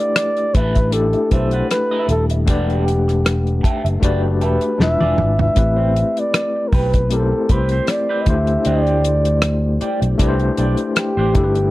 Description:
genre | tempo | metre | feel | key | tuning
lush 1970s-style soul | 78 BPM | 4/4 | swing 54% on 16ths | unclear | A4 = 441 Hz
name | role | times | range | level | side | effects
breathy flugelhorn | melody | 0.0-11.7 s | G4 to E5 | -20 LUFS | right 1 dB | none
overdriven tine electric piano | accompaniment | 0.0-11.7 s | G#3 to F#5 | -22 LUFS | left 4 dB | fast tremolo
electric guitar through a small old amp | riff | 0.0-11.6 s | C4 to F#5 | -27 LUFS | right 3 dB | wah, spring reverb
damped 70s drum kit | drums | 0.2-11.7 s | hi-hat, kick drum, rim click, snare drum, toms | -18 LUFS | equal | none
fingered electric bass | bass | 0.6-11.7 s | D#1 to D2 | -18 LUFS | equal | none
room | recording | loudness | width
little or no reverb | dry, close 1970s-style studio recording | -15 LUFS | side -17 dB against mid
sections
0.0-11.7 A section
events
drum fill 4.8-5.6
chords
0.0 G69; 2.5 Em11; 4.8 E7b9; 5.6 Am9; 8.3 D7sus4

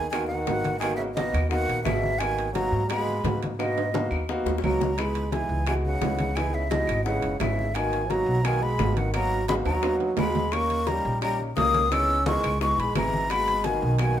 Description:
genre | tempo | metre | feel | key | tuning
Afro-Cuban jazz | 173 BPM | 4/4 | straight | G# minor | A4 = 441 Hz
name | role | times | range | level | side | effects
breathy mellow silver concert flute | melody | 0.0-14.2 s | D#5 to E6 | -28 LUFS | left 1 dB | none
bright trombone | second line | 0.0-14.2 s | B2 to C#4 | -30 LUFS | right 3 dB | none
warm concert grand piano | accompaniment | 0.0-14.2 s | G#3 to A#4 | -31 LUFS | left 1 dB | none
upright bass | bass | 0.0-14.2 s | F#1 to G#2 | -29 LUFS | equal | none
bongos | percussion | 0.1-14.2 s | none | -36 LUFS | left 7 dB | none
claves | percussion | 0.1-14.2 s | none | -39 LUFS | left 3 dB | none
congas | percussion | 0.1-14.2 s | none | -34 LUFS | left 2 dB | none
timbales | percussion | 0.1-14.2 s | none | -34 LUFS | right 8 dB | none
room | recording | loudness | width
moderate large studio reverb, RT60 1.2 s | minimal, uncompressed stereo recording | -23 LUFS | side -10 dB against mid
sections
0.0-14.2 A section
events
drum fill 3.6-5.0, 9.7-10.5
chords
0.0 G#m7; 5.0 C#m7; 7.8 G#m7; 10.5 D#7; 11.9 C#m7; 13.3 G#m7

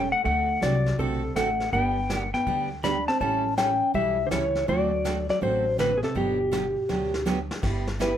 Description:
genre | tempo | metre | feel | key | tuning
country, western swing | 163 BPM | 4/4 | swing 65% on 8ths | G major | A4 = 440 Hz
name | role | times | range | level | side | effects
clean lap steel guitar | melody | 0.0-8.2 s | G4 to B5 | -25 LUFS | left 2 dB | plate reverb
hollow-body jazz guitar | second line | 0.0-7.3 s | B2 to D4 | -30 LUFS | right 3 dB | none
upright bass | bass | 0.0-8.2 s | E1 to D2 | -31 LUFS | left 1 dB | none
picked steel-string acoustic guitar | accompaniment | 0.3-8.1 s | D3 to A4 | -31 LUFS | right 5 dB | none
vintage brush drum kit | drums | 0.3-8.2 s | brushed snare drum, crash cymbal, hi-hat, kick drum, snare drum | -35 LUFS | left 1 dB | none
room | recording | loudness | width
moderate club reverb, RT60 0.5 s | none | -23 LUFS | side -10 dB against mid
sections
0.0-7.6 A section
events
drum fill 6.9-7.6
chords
0.3 D7; 1.7 G; 3.2 A7; 4.7 D7; 6.2 Gmaj7; 7.6 G6

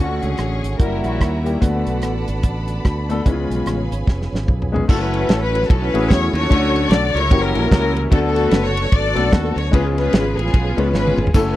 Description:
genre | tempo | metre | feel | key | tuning
uptempo gospel | 148 BPM | 4/4 | swing 60% on 8ths | F# minor | A4 = 440 Hz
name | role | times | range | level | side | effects
rich studio string section | melody | 0.0-1.6, 4.9-11.6 s | A3 to D5 | -21 LUFS | left 2 dB | none
clear grand piano | accompaniment | 0.0-11.6 s | C#3 to B4 | -22 LUFS | left 3 dB | none
tonewheel organ | sustained chords | 0.0-11.6 s | D3 to C#5 | -28 LUFS | right 3 dB | slow rotary speaker, overdrive, chorus vibrato
warm studio string section | sustained chords | 0.0-4.9 s | C#5 to C#6 | -33 LUFS | equal | none
modern bright fingered electric bass | bass | 0.0-11.6 s | E#1 to E2 | -22 LUFS | equal | none
warm soul drum kit | drums | 0.2-11.5 s | crash cymbal, hi-hat, kick drum, ride cymbal, rim click, snare drum, toms | -16 LUFS | equal | none
tambourine | percussion | 11.3-11.5 s | none | -37 LUFS | left 5 dB | none
room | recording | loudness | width
little or no reverb | dry, close 1970s-style studio recording | -15 LUFS | side -14 dB against mid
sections
0.0-4.9 A section; 4.9-11.6 B section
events
drum fill 4.1-4.9, 10.9-11.3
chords
0.0 Dmaj7; 0.8 F#7b9; 1.6 Bm7; 3.3 C#7; 4.9 F#m7; 6.5 Dmaj7; 7.3 F#7b9; 8.1 Bm7; 9.7 C#7

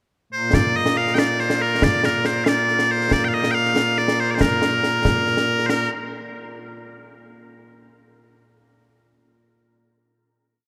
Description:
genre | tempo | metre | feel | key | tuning
scottish traditional, Scottish pipe music | 93 BPM (dotted quarters) | 6/8 | straight | Bb major | A4 = 440 Hz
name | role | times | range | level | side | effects
loud bright bagpipes | melody | 0.3-5.9 s | Bb2 to G5 | -22 LUFS | equal | none
concert snare drum and concert bass drum | drums | 0.5-5.9 s | none | -25 LUFS | equal | none
room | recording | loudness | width
wet cathedral reverb, RT60 5.3 s | in a vast, echoing space | -20 LUFS | mono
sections
0.0-0.5 pickup bar; 0.5-5.7 A section; 5.7-7.0 final note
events
none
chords
none

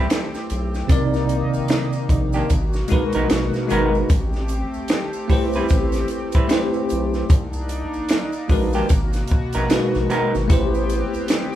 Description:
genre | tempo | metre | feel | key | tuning
R&B, neo-soul | 75 BPM | 4/4 | swing 60% on 16ths | unclear | A4 = 442 Hz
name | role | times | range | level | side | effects
vintage hollow-body jazz guitar | second line | 0.0-10.3 s | Eb3 to B4 | -26 LUFS | right 2 dB | none
bell-like tine electric piano | accompaniment | 0.0-11.6 s | C3 to D5 | -22 LUFS | equal | medium stereo tremolo
chorused pulse-width pad | sustained chords | 0.0-11.6 s | B2 to G4 | -28 LUFS | left 1 dB | none
round analog bass | bass | 0.0-11.2 s | G#1 to C2 | -25 LUFS | equal | none
compact cocktail drum kit | drums | 0.1-11.5 s | hi-hat, kick drum, snare drum | -19 LUFS | equal | none
finger snaps and maracas | percussion | 0.1-11.5 s | none | -40 LUFS | equal | none
room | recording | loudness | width
moderate large studio reverb, RT60 1.3 s | band playing live in one room | -18 LUFS | side -12 dB against mid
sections
0.0-4.1 A section; 4.1-11.6 A section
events
none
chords
0.0 Am9; 0.9 Cm9; 2.5 G#m9; 4.1 Am9; 7.3 Cm9; 8.9 G#m9; 10.5 Am9

